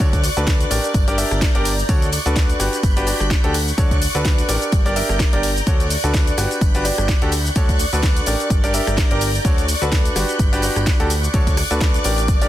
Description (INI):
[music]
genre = piano house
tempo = 127 BPM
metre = 4/4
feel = swing 56% on 16ths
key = D major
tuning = A4 = 440 Hz
[part]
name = string machine, violins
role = sustained chords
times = 0.0-12.5 s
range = D5 to G6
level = -26 LUFS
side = equal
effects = ensemble chorus, sidechain pumping
[part]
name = bright baby grand piano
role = riff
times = 0.0-12.5 s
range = D4 to E5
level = -23 LUFS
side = equal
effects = sidechain pumping, tape echo
[part]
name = fat analog bass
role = bass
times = 0.0-12.5 s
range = G1 to D2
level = -22 LUFS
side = equal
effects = sidechain pumping
[part]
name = electronic kick drum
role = drums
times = 0.0-12.4 s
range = none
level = -17 LUFS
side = equal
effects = overdrive
[part]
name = house drum kit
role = drums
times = 0.0-12.5 s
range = hi-hat, rim click, shaker, snare drum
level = -25 LUFS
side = left 2 dB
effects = overdrive
[part]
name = tambourine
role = percussion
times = 0.1-12.5 s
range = none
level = -34 LUFS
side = right 5 dB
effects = none
[sound]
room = little or no reverb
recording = dense, heavily limited modern master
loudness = -15 LUFS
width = side -13 dB against mid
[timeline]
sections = 0.0-12.5 A section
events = none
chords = 0.0 Dmaj7; 0.9 Gm; 1.9 Dmaj7; 2.6 Gmaj7; 3.5 Dmaj7; 4.7 Gm; 5.7 Dmaj7; 6.4 Gmaj7; 7.3 Dmaj7; 8.5 Gm; 9.4 Dmaj7; 10.2 Gmaj7; 11.1 Dmaj7